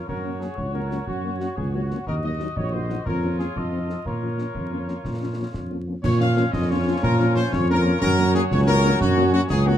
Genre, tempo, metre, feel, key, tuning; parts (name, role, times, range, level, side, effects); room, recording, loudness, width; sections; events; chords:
military-style march for wind band; 121 BPM (dotted quarters); 6/8; straight; Bb minor; A4 = 441 Hz
warm trumpet section; melody; 0.0-9.8 s; Gb4 to F5; -28 LUFS; left 2 dB
warm woodwind section; second line; 0.0-9.8 s; F4 to Eb5; -31 LUFS; left 2 dB
mellow tuba; bass; 0.1-9.8 s; Bb1 to Bb2; -22 LUFS; right 1 dB
concert bass drum, concert snare drum and clash cymbals; drums; 0.1-9.7 s; -31 LUFS; left 1 dB
dark French horn section; accompaniment; 0.2-9.7 s; F3 to Eb4; -28 LUFS; left 4 dB
clear trombone section; sustained chords; 6.0-9.8 s; F3 to Db4; -29 LUFS; right 1 dB
little or no reverb; dark, warm production, vinyl crackle; -20 LUFS; side -10 dB against mid
0.0-6.0 A section; 6.0-9.8 A section
0.1 Gb; 2.1 Ebm; 3.1 Bbm/F; 3.6 F7; 4.1 Bbm; 8.0 Gb